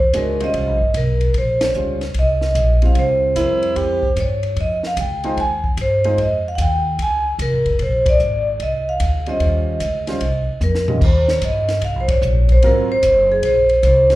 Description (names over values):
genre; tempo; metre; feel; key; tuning
jazz, small-group swing and bop; 149 BPM; 4/4; swing 66% on 8ths; Eb mixolydian; A4 = 445 Hz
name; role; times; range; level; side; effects
vibraphone with medium mallets; melody; 0.0-14.2 s; Ab4 to Ab5; -18 LUFS; right 1 dB; slapback echo
upright bass; bass; 0.0-14.2 s; F1 to G2; -19 LUFS; equal; none
compact cocktail drum kit; drums; 0.0-14.2 s; crash cymbal, hi-hat, kick drum, ride cymbal, snare drum, toms; -25 LUFS; equal; none
warm upright piano; accompaniment; 0.1-6.2, 9.3-14.2 s; Eb2 to Eb5; -24 LUFS; right 2 dB; slapback echo
breathy alto saxophone; second line; 3.4-4.1 s; E4 to G4; -24 LUFS; right 2 dB; slapback echo
room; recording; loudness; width
moderate club reverb, RT60 0.6 s; live gig heard through the venue's PA, club reverb; -15 LUFS; side -16 dB against mid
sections
0.0-11.0 A section; 11.0-14.2 A section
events
band accent 1.6, 8.0, 12.0; drum fill 10.6-11.0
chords
0.0 Eb13; 3.0 C7; 4.6 Fm7; 7.8 Bb9; 9.4 Eb13; 11.0 Eb6; 12.6 Ab13